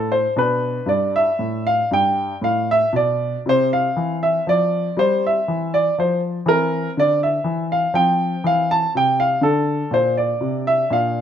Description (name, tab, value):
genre	classical, baroque-style suite movement for grand piano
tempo	80 BPM (dotted quarters)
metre	12/8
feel	rubato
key	C major, F major from 6.5 s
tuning	A4 = 441 Hz
part	warm baby grand piano	solo	0.0-11.2 s	G2 to A5	-17 LUFS	equal	none
room	light reverb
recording	none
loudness	-17 LUFS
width	side -9 dB against mid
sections	0.0-11.2 A section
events	none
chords	0.3 G; 3.4 C; 6.5 C7; 7.9 F5; 9.4 Bbadd9